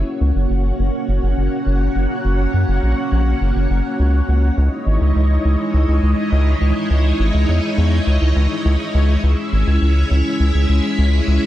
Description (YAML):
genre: synthwave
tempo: 103 BPM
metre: 4/4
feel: straight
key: C# dorian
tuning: A4 = 441 Hz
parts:
  - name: string machine, full ensemble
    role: sustained chords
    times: 0.0-11.5 s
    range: G#3 to F#5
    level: -20 LUFS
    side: equal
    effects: ensemble chorus
  - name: round analog bass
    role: bass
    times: 0.0-11.4 s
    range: F#1 to F#2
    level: -15 LUFS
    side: equal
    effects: none
room: light reverb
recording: dense, heavily limited modern master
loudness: -15 LUFS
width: side -13 dB against mid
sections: 0.0-9.2 A section; 9.2-11.5 B section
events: filter sweep on string machine 0.0-9.2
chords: 0.0 F#; 4.6 C#madd9; 9.2 C#m